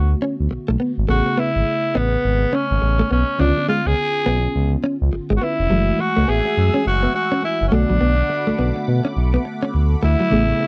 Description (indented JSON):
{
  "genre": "R&B",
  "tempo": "104 BPM",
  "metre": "4/4",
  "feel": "swing 61% on 16ths",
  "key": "F# minor",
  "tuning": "A4 = 440 Hz",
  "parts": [
    { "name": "raspy tenor saxophone", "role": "melody", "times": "0.0-10.7 s", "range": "B3 to G#4", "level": "-23 LUFS", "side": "equal", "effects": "slapback echo" },
    { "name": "FM electric piano with soft pad layer", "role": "accompaniment", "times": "0.0-10.7 s", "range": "C#3 to G#4", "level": "-28 LUFS", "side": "equal", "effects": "chorus" },
    { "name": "smooth synth bass", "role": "bass", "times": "0.0-10.5 s", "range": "E#1 to B2", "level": "-21 LUFS", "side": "equal", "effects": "none" },
    { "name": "direct-recorded clean electric guitar", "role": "riff", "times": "0.2-10.6 s", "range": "F#3 to C#4", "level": "-24 LUFS", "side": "equal", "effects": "lush chorus" },
    { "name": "phased analog pad", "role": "sustained chords", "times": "6.1-10.7 s", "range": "A3 to E6", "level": "-33 LUFS", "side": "equal", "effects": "phaser, chorus" }
  ],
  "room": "little or no reverb",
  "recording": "dry, close 1970s-style studio recording",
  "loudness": "-19 LUFS",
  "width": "mono",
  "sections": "0.0-5.7 A section; 5.7-10.7 B section",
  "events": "none",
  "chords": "0.0 Bm7; 1.1 Amaj9; 3.4 C#7b9; 5.7 F#m9; 7.7 Bm7"
}